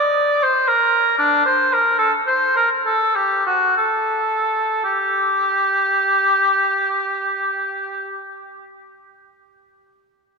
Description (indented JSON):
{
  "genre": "classical, baroque-style fantasia for unaccompanied oboe",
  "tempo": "54-83 BPM (dotted quarters)",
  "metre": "12/8",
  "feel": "rubato",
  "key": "G minor",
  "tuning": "A4 = 440 Hz",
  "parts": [
    { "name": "warm oboe", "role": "solo", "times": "0.0-8.2 s", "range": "D4 to D5", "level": "-16 LUFS", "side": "equal", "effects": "none" }
  ],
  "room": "wet church reverb, RT60 3.9 s",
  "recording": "minimal, uncompressed stereo recording",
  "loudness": "-16 LUFS",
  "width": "side -4 dB against mid",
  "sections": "0.0-4.8 A section; 4.8-8.9 B section",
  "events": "slowing down 0.0-4.8",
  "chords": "none",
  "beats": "0.44 | 1.20 2.00 2.85 3.78 | 4.83 5.86 6.88 7.91"
}